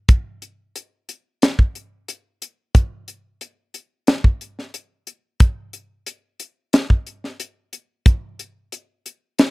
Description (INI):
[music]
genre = jazz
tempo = 90 BPM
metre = 4/4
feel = straight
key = none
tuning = none
[part]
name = crisp fusion drum kit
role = drums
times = 0.1-9.5 s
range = hi-hat, kick drum, snare drum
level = -15 LUFS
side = equal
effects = none
[sound]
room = little or no reverb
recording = dry, close 1970s-style studio recording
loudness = -17 LUFS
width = side -25 dB against mid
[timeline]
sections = 0.0-9.5 A section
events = none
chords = none